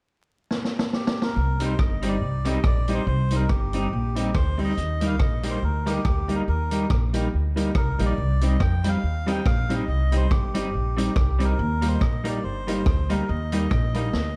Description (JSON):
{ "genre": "ska", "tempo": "141 BPM", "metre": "4/4", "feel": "swing 56% on 8ths", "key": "unclear", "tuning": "A4 = 440 Hz", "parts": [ { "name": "vintage drum kit", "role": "drums", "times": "0.5-14.2 s", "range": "hi-hat, kick drum, rim click, snare drum", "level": "-28 LUFS", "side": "equal", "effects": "none" }, { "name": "melodica", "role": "melody", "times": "0.9-14.4 s", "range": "G4 to G5", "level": "-34 LUFS", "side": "equal", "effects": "slapback echo" }, { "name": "upright bass", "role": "bass", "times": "1.4-14.4 s", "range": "G1 to F2", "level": "-27 LUFS", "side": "equal", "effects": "none" }, { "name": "semi-hollow electric guitar", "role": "accompaniment", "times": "1.6-14.1 s", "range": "G3 to Eb4", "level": "-32 LUFS", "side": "equal", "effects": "tremolo" }, { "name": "clear upright piano", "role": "stabs", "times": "1.6-14.1 s", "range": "G3 to G4", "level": "-33 LUFS", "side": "equal", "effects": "slapback echo" } ], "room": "light reverb, small room ambience", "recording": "dark, warm production, vinyl crackle", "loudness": "-24 LUFS", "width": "mono", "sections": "0.0-1.4 A section; 1.4-14.4 B section", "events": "drum fill 0.5-1.4, 14.1", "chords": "0.0 N.C.; 1.4 Cm; 4.8 Eb; 8.2 Cm; 11.6 Eb" }